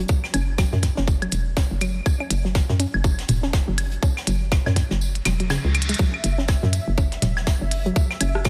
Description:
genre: minimal techno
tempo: 122 BPM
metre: 4/4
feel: swing 59% on 16ths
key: unclear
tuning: A4 = 440 Hz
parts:
  - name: hollow knocking FM bass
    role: bass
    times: 0.0-8.5 s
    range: E1 to F#2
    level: -26 LUFS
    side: equal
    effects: sidechain pumping
  - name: electronic kick drum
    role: drums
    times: 0.1-8.5 s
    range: none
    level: -23 LUFS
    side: equal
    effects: none
  - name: jazz brush drum kit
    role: drums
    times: 0.1-8.5 s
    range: hi-hat, snare drum, tambourine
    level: -37 LUFS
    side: equal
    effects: sidechain pumping on hats, high-pass filter on hats, high-pass filter on snare, sidechain pumping on perc, high-pass filter on perc, high-pass filter on room
  - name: booming analog drum machine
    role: percussion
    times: 0.2-8.5 s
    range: claves, rim click, toms, woodblock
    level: -30 LUFS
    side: equal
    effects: diffuse ambient delay
  - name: hollow square pluck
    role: riff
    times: 0.3-8.5 s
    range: C#3 to C#4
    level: -32 LUFS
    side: equal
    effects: chorus, phaser, sidechain pumping, analog delay
  - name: electronic hi-hat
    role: drums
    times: 0.3-8.3 s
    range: none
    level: -30 LUFS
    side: equal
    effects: none
  - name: reverse cymbal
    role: sound effects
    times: 5.4-6.0 s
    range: none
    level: -36 LUFS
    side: equal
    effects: none
  - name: pulsing gated texture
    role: texture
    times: 6.0-8.5 s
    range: E5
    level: -38 LUFS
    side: equal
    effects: chorus, built-in reverb, sidechain pumping
room: light reverb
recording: none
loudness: -22 LUFS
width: mono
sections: 0.0-8.5 A section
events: kick drops out 5.0-6.0; reverse cymbal 5.4-6.0; drum fill 5.7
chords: 0.0 F#5

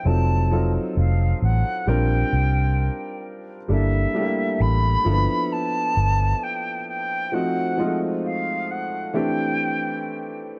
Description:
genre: R&B, neo-soul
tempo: 66 BPM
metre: 4/4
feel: swing 57% on 16ths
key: G dorian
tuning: A4 = 440 Hz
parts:
  - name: silver concert flute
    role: melody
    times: 0.0-10.5 s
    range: E5 to B5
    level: -28 LUFS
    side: equal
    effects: none
  - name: clear upright piano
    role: accompaniment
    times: 0.0-10.6 s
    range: E3 to Bb4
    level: -28 LUFS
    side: equal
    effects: none
  - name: vintage muted fingered electric bass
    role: bass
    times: 0.1-6.3 s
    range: F1 to C2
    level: -22 LUFS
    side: equal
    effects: none
room: studio ambience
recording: dark, warm production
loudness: -22 LUFS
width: mono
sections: 0.0-10.6 A section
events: break 7.3-10.6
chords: 0.0 F7b9; 1.9 Bb69; 3.7 Gm69; 5.0 G13; 7.3 F7b9; 9.1 D9sus4

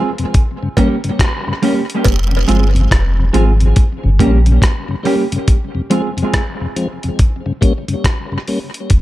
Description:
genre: dub reggae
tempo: 70 BPM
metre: 4/4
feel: swing 62% on 16ths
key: unclear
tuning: A4 = 441 Hz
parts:
  - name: mellow electric guitar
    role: accompaniment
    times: 0.0-6.1 s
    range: G3 to Ab4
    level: -19 LUFS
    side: right 3 dB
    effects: tape echo
  - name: mellow tonewheel organ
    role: accompaniment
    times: 0.0-8.6 s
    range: F2 to Db4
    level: -20 LUFS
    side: left 2 dB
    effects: slow rotary speaker, tape echo
  - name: dusty soul sampler-style drum kit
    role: drums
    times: 0.2-9.0 s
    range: hi-hat, kick drum, rim click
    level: -15 LUFS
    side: equal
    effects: none
  - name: cowbell and jawbone-type rattle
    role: percussion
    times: 0.8-2.3 s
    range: none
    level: -25 LUFS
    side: right 3 dB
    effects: tape echo
  - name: warm sub bass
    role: bass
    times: 2.1-9.0 s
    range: F1 to Bb1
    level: -12 LUFS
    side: equal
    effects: none
room: light reverb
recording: echo-heavy mix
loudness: -12 LUFS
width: side -16 dB against mid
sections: 0.0-9.0 A section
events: break 0.0-2.1, 5.5-9.0; part muted 2.1-9.0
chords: 0.3 Gdim; 2.1 Fm; 3.8 Gdim; 5.5 Fm; 7.2 Gdim

